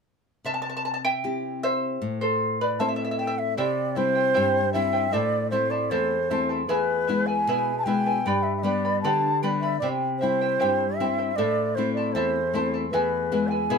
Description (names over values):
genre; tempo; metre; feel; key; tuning
andean folk, Andean ensemble; 77 BPM; 2/4; straight; unclear; A4 = 443 Hz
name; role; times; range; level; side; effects
nylon-string guitar; accompaniment; 0.4-13.8 s; E2 to G4; -28 LUFS; left 4 dB; none
charango; accompaniment; 0.5-13.8 s; E4 to B5; -27 LUFS; right 1 dB; none
mellow large quena; melody; 2.8-13.8 s; B4 to A5; -25 LUFS; right 1 dB; none
room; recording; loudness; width
moderate studio reverb, RT60 0.6 s; close, detailed microphones; -22 LUFS; side -5 dB against mid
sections
0.4-3.6 A section; 3.6-13.8 B section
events
charango solo 0.4-3.6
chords
0.4 C; 2.0 Am; 3.6 C; 5.1 Am; 6.7 E; 8.3 G; 9.8 C; 11.4 Am; 12.9 E